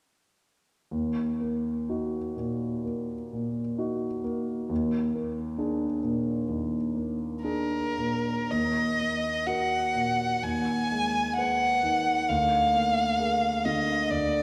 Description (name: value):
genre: classical, romantic duo for violin and grand piano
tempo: 63 BPM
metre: 4/4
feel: uneven beats, rubato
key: Eb minor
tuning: A4 = 444 Hz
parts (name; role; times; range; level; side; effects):
- warm concert grand piano; accompaniment; 0.9-14.4 s; D2 to Cb5; -31 LUFS; equal; none
- rich violin; melody; 7.4-14.4 s; Bb4 to Ab5; -28 LUFS; equal; none
room: wet church reverb, RT60 2.7 s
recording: recorded in a church or concert hall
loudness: -28 LUFS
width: mono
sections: 0.9-8.5 A section; 8.5-14.4 B section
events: none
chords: 0.9 Ebm; 4.7 Bb7/Eb; 8.5 Ebm; 10.4 Abm/Eb; 12.3 Bb7/D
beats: | 0.91 1.89 2.85 3.79 | 4.70 5.60 6.49 7.44 | 8.51 9.47 10.43 11.37 | 12.29 13.19 14.10